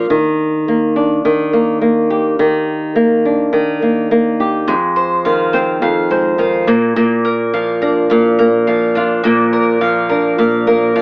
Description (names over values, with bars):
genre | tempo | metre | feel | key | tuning
acoustic pop | 105 BPM | 4/4 | straight | Eb major | A4 = 439 Hz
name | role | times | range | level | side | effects
flamenco guitar | accompaniment | 0.0-11.0 s | F2 to G4 | -12 LUFS | equal | none
bowl-back mandolin | arpeggios | 4.7-11.0 s | Ab3 to F5 | -16 LUFS | right 1 dB | none
room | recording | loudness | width
light reverb | AM radio sound | -11 LUFS | side -34 dB against mid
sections
0.0-11.0 A section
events
none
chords
0.1 Ebmaj7; 4.7 Fm7; 6.7 Bb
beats
| 0.10 0.67 1.25 1.82 | 2.39 2.96 3.53 4.11 | 4.68 5.25 5.82 6.39 | 6.96 7.54 8.11 8.68 | 9.25 9.82 10.39 10.96